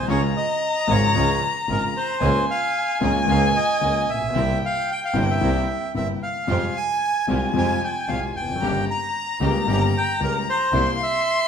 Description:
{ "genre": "tango", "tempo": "113 BPM", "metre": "4/4", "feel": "rubato", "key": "F minor", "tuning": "A4 = 440 Hz", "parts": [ { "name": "bandoneon", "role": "melody", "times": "0.0-11.5 s", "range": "Bb4 to Bb5", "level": "-25 LUFS", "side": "right 2 dB", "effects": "none" }, { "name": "dark violin", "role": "second line", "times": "0.0-11.5 s", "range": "G5 to C6", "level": "-25 LUFS", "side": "left 2 dB", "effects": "none" }, { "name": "warm concert grand piano", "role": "accompaniment", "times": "0.0-11.0 s", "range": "G1 to G4", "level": "-25 LUFS", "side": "left 2 dB", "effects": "none" }, { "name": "rich double bass", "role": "bass", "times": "0.0-11.0 s", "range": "F1 to F2", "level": "-25 LUFS", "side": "right 2 dB", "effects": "none" }, { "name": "bright studio string section", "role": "stabs", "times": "0.1-11.0 s", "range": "Ab3 to Bb4", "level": "-33 LUFS", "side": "right 3 dB", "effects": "none" } ], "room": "moderate large studio reverb, RT60 1.3 s", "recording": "minimal, uncompressed stereo recording", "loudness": "-19 LUFS", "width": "side -7 dB against mid", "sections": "0.0-11.5 A section", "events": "none", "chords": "0.1 Db; 2.2 Bbm7/Db; 4.3 C7; 6.5 Fmadd9; 8.6 Gdim; 10.7 C7", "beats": "| 0.09 0.63 1.16 1.69 | 2.22 2.75 3.27 3.81 | 4.34 4.87 5.41 5.95 | 6.48 7.02 7.55 8.09 | 8.62 9.14 9.68 10.21 | 10.74 11.27" }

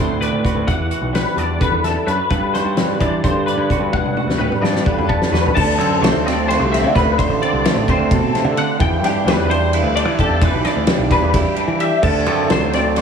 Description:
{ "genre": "math rock and midwest emo", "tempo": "259 BPM (eighths)", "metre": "7/8", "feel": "straight", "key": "unclear", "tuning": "A4 = 440 Hz", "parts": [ { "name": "twangy electric guitar", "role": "accompaniment", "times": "0.0-13.0 s", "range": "G2 to D5", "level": "-21 LUFS", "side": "right 7 dB", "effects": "none" }, { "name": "twelve-string electric guitar", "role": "arpeggios", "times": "0.0-13.0 s", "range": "G4 to A5", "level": "-20 LUFS", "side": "left 4 dB", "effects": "ensemble chorus, digital delay" }, { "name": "overdriven picked electric bass", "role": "bass", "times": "0.0-13.0 s", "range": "A1 to E3", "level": "-21 LUFS", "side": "left 1 dB", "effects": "none" }, { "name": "loose indie drum kit", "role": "drums", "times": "0.2-13.0 s", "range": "crash cymbal, hi-hat, kick drum, ride cymbal, snare drum, toms", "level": "-20 LUFS", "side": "left 1 dB", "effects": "none" } ], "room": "moderate lush hall reverb, RT60 2.3 s", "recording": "big arena sound, small room reverb", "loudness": "-14 LUFS", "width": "side -6 dB against mid", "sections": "0.0-5.6 A section; 5.6-13.0 B section", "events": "drum fill 3.9-5.6", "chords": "0.0 D6; 0.7 Em9; 2.3 Gmaj7; 3.9 Gmaj9; 5.6 D7; 8.8 Em7; 12.0 D7", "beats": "0.22 0.45 | 0.68 0.92 1.15 1.38 1.61 1.85 2.08 | 2.31 2.55 2.78 3.01 3.25 3.48 3.71 | 3.94 4.17 4.41 4.64 4.87 5.10 5.34 | 5.57 5.80 6.03 6.26 6.49 6.72 6.96 | 7.19 7.42 7.65 7.88 8.11 8.34 8.57 | 8.80 9.04 9.27 9.50 9.73 9.96 10.19 | 10.42 10.65 10.88 11.12 11.35 11.58 11.81 | 12.04 12.27 12.50 12.73 12.96" }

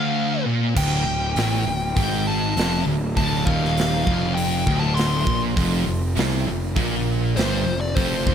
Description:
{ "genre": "stoner and doom metal", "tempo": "100 BPM", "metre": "4/4", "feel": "straight", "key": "D minor", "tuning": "A4 = 440 Hz", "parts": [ { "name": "fuzz lead guitar", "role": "melody", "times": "0.0-8.3 s", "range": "C5 to C6", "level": "-26 LUFS", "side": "left 3 dB", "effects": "wah, distortion, tape echo" }, { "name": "overdriven electric guitar", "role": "riff", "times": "0.0-8.3 s", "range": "D2 to C3", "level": "-29 LUFS", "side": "right 1 dB", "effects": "none" }, { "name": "thick fuzz guitar", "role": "riff", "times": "0.0-8.3 s", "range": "D2 to C3", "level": "-26 LUFS", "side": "left 9 dB", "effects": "distortion" }, { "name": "thick fuzz guitar", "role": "riff", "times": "0.0-8.3 s", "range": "D2 to C3", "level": "-26 LUFS", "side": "right 9 dB", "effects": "distortion" }, { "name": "fuzz picked electric bass", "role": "bass", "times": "0.8-8.3 s", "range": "D1 to C2", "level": "-26 LUFS", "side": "equal", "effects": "overdrive" }, { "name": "big rock drum kit", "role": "drums", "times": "0.8-8.3 s", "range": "crash cymbal, hi-hat, kick drum, snare drum", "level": "-26 LUFS", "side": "right 1 dB", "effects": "none" } ], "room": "small room ambience", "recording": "none", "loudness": "-19 LUFS", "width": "side -8 dB against mid", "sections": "0.0-8.3 A section", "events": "none", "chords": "0.0 Dm; 5.6 F5", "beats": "0.16 | 0.76 1.36 1.96 2.56 | 3.16 3.76 4.36 4.96 | 5.56 6.16 6.76 7.37 | 7.97" }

